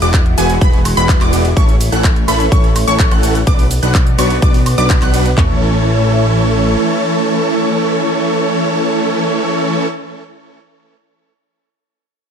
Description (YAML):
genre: EDM, festival progressive house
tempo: 126 BPM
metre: 4/4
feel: straight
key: A major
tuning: A4 = 445 Hz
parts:
  - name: lush unison pad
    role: sustained chords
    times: 0.0-9.9 s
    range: G#3 to D5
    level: -22 LUFS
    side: equal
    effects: chorus, phaser, sidechain pumping
  - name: wide unison pluck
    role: arpeggios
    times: 0.0-9.9 s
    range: G#5 to F#6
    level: -20 LUFS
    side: left 1 dB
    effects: sidechain pumping, digital delay
  - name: big supersaw lead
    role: riff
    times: 0.0-9.9 s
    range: E3 to F#5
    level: -16 LUFS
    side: right 1 dB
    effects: sidechain pumping, digital delay
  - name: fat analog bass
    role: bass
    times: 0.0-6.8 s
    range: E1 to B1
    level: -16 LUFS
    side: equal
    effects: tube saturation, sidechain pumping
  - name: big-room dance drum kit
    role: drums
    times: 0.0-5.4 s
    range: handclaps, hi-hat, ride cymbal, shaker, woodblock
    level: -22 LUFS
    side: right 1 dB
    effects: overdrive, small room ambience
  - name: big-room dance drum kit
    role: drums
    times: 0.1-5.5 s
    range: handclaps, kick drum, toms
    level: -12 LUFS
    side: equal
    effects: overdrive, small room ambience
room: light reverb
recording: dark, warm production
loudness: -11 LUFS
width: side -7 dB against mid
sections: 0.0-5.4 A section; 5.4-9.2 B section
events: drop 0.0-5.4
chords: 0.0 Eadd9; 1.6 A; 3.5 Bm; 5.4 A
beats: 0.14 0.61 1.09 | 1.57 2.04 2.52 3.00 | 3.47 3.95 4.42 4.90 | 5.38 5.85 6.33 6.80 | 7.28 7.76 8.23 8.71